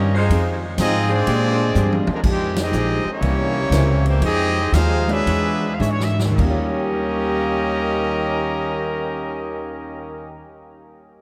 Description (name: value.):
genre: jazz, big band swing.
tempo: 105-124 BPM.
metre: 4/4.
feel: swing 66% on 8ths.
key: Eb mixolydian.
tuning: A4 = 440 Hz.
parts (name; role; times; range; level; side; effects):
bright trumpet section; melody; 0.0-10.4 s; Ab3 to F5; -26 LUFS; equal; none.
muted trombone section; second line; 0.0-10.4 s; C3 to G4; -29 LUFS; equal; none.
archtop guitar, miked and amplified; accompaniment; 0.0-10.6 s; Bb2 to C#5; -30 LUFS; equal; none.
upright bass; bass; 0.0-10.4 s; Bb1 to Bb2; -24 LUFS; equal; none.
warm saxophone section; sustained chords; 0.1-1.7 s; Ab3 to C5; -34 LUFS; equal; none.
swinging big-band drum kit; drums; 0.3-6.6 s; crash cymbal, hi-hat, kick drum, ride cymbal, snare drum, toms; -30 LUFS; equal; none.
warm concert grand piano; accompaniment; 3.7-10.6 s; Eb2 to Db5; -31 LUFS; equal; none.
room: moderate cathedral reverb, RT60 5.5 s.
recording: in a vast, echoing space.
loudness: -20 LUFS.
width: mono.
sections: 0.0-2.2 A section; 2.2-6.4 B section; 6.4-11.0 C section.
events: drum fill 1.8-2.2, 5.8-6.4; slowing down 2.2-6.4; band accent 2.5.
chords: 0.3 Fm7; 1.3 Bb13; 2.2 Fm9; 3.2 C7b9; 4.2 Fm9; 5.3 E13; 6.4 Eb9.